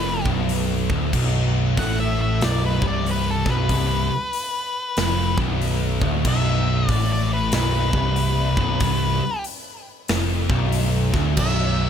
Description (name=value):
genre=stoner and doom metal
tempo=94 BPM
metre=4/4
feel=swing 63% on 8ths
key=unclear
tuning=A4 = 440 Hz
part: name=octave-fuzz lead guitar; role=melody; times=0.0-11.9 s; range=A4 to F#5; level=-26 LUFS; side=left 2 dB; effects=distortion, tape echo
part: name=fuzz guitar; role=riff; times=0.0-11.9 s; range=B1 to A2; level=-26 LUFS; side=left 7 dB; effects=distortion
part: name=scooped high-gain guitar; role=riff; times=0.0-11.9 s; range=B1 to A2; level=-27 LUFS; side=equal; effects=distortion
part: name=thick fuzz guitar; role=riff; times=0.0-11.9 s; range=B1 to A2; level=-25 LUFS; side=right 7 dB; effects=distortion
part: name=overdriven picked electric bass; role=bass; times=0.0-11.9 s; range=B0 to A1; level=-26 LUFS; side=equal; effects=none
part: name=big rock drum kit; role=drums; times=0.3-11.6 s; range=crash cymbal, hi-hat, kick drum, snare drum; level=-26 LUFS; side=equal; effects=none
room=light reverb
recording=none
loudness=-19 LUFS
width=side -8 dB against mid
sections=0.0-11.9 A section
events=lead electric guitar solo 0.0-11.9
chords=0.0 Bm